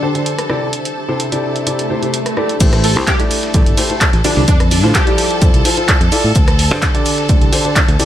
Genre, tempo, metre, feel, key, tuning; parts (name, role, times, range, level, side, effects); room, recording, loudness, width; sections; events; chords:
piano house; 128 BPM; 4/4; straight; A minor; A4 = 439 Hz
bright studio violin section; sustained chords; 0.0-8.1 s; A4 to A5; -23 LUFS; equal; vintage 12-bit sampler grit, sidechain pumping
clear grand piano; riff; 0.0-8.1 s; C3 to D5; -19 LUFS; equal; sidechain pumping, dub echo
granular cloud pad; texture; 0.0-2.6 s; D4 to E5; -26 LUFS; left 1 dB; built-in reverb, sidechain pumping
punchy analog drum machine; drums; 0.1-8.1 s; crash cymbal, handclaps, hi-hat, ride cymbal, rim click; -19 LUFS; right 1 dB
swell; sound effects; 1.8-2.6 s; -24 LUFS; left 2 dB
fingered electric bass; bass; 2.6-8.0 s; G1 to A2; -16 LUFS; equal; sidechain pumping
dusty soul sampler-style drum kit; drums; 2.6-8.1 s; hi-hat, shaker, snare drum; -27 LUFS; left 1 dB
electronic kick drum; drums; 2.6-7.9 s; -14 LUFS; equal
plucky unison lead; melody; 2.8-5.4 s; D4 to A4; -22 LUFS; right 1 dB; ensemble chorus, cassette tape, dub echo
light reverb, digital ambience; -11 LUFS; side -11 dB against mid
0.0-2.6 A section; 2.6-8.1 B section
swell 1.8-2.6; drop 2.6-8.1
0.5 C6; 2.6 Am7; 4.5 Fmaj7; 6.4 D7sus4